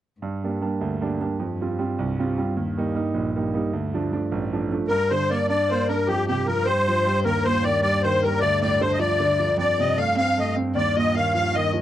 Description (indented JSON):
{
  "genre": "celtic folk",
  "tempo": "103 BPM (dotted quarters)",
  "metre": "6/8",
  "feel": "straight",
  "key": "G minor",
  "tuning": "A4 = 441 Hz",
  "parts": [
    { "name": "bright concert grand piano", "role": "accompaniment", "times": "0.2-11.8 s", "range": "A1 to F4", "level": "-25 LUFS", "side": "right 4 dB", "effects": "none" },
    { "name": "warm cello", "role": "drone", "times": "0.2-11.8 s", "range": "G2", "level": "-29 LUFS", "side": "left 2 dB", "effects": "none" },
    { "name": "musette accordion", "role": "melody", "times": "4.9-11.7 s", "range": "G4 to F5", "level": "-23 LUFS", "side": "right 1 dB", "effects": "none" },
    { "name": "dark fiddle", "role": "second line", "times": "4.9-11.7 s", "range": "G4 to F5", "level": "-25 LUFS", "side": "left 7 dB", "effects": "none" }
  ],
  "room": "light reverb",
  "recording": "dry, close 1970s-style studio recording",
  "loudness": "-20 LUFS",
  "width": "side -12 dB against mid",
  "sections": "0.2-4.9 A section; 4.9-11.8 B section",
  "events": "none",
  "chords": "0.2 Gm; 1.4 Fsus2; 2.6 Eb; 3.7 Dm; 4.9 Gm; 6.1 Fsus2; 7.2 Eb; 8.4 Dm; 9.6 F; 10.7 Ebsus2",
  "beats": "| 0.21 0.80 | 1.39 1.98 | 2.56 3.15 | 3.74 4.32 | 4.91 5.49 | 6.08 6.66 | 7.25 7.83 | 8.41 9.00 | 9.58 10.16 | 10.75 11.33"
}